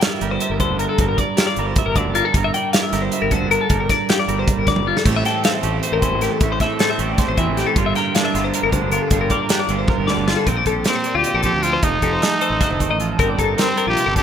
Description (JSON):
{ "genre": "math rock and midwest emo", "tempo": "310 BPM (eighths)", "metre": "7/8", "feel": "straight", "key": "G dorian", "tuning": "A4 = 436 Hz", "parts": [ { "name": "twelve-string electric guitar", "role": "accompaniment", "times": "0.0-14.2 s", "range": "G2 to E5", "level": "-23 LUFS", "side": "right 9 dB", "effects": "wide subtle chorus" }, { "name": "twelve-string electric guitar", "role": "arpeggios", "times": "0.0-14.2 s", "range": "F4 to G5", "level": "-21 LUFS", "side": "left 8 dB", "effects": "tremolo" }, { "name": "modern studio drum kit", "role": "drums", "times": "0.0-14.2 s", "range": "hi-hat, kick drum, snare drum, splash cymbal, toms", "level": "-21 LUFS", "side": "equal", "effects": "none" }, { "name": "fuzz fingered electric bass", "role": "bass", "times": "0.2-14.2 s", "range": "F1 to E2", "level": "-25 LUFS", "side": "equal", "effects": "overdrive" }, { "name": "crunchy overdriven guitar", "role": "riff", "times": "5.1-10.5 s", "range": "G2 to E4", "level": "-26 LUFS", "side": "equal", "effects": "phaser" }, { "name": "growling trumpet", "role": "melody", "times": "10.9-14.2 s", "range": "C4 to G4", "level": "-21 LUFS", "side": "equal", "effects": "tape echo" } ], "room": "light reverb", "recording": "rough home demo mix", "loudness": "-16 LUFS", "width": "side -8 dB against mid", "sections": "0.0-10.5 A section; 10.5-14.2 B section", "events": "drum fill 4.8, 9.9-10.5", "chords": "0.0 Gm7; 5.1 Am7; 7.8 Gm7; 10.5 Bb69; 11.8 F9; 13.2 Gm11" }